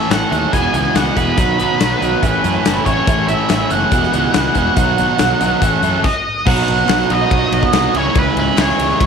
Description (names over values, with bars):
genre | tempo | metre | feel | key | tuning
classic rock | 142 BPM | 4/4 | straight | unclear | A4 = 436 Hz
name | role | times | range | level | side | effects
octave-fuzz lead guitar | melody | 0.0-9.1 s | B4 to G#5 | -19 LUFS | equal | wah, distortion
overdriven electric guitar | riff | 0.0-9.1 s | E2 to A4 | -18 LUFS | right 12 dB | none
sludgy distorted guitar | riff | 0.0-9.1 s | A2 to E4 | -22 LUFS | left 12 dB | overdrive
fuzz fingered electric bass | bass | 0.1-9.1 s | E1 to F#2 | -22 LUFS | equal | overdrive
huge arena drum kit | drums | 0.1-9.1 s | crash cymbal, hi-hat, kick drum, ride cymbal, snare drum | -19 LUFS | left 3 dB | none
group handclap | percussion | 3.5-8.7 s | none | -31 LUFS | left 14 dB | none
room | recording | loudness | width
light reverb | 1960s-style stereo with parts hard left and right | -12 LUFS | side -6 dB against mid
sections
0.0-6.5 A section; 6.5-9.1 B section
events
stop 6.0-6.5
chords
0.0 A; 0.5 E; 1.4 B; 2.2 A; 3.9 Eadd9; 4.8 B; 5.6 A; 6.0 N.C.; 6.5 B; 7.9 C#m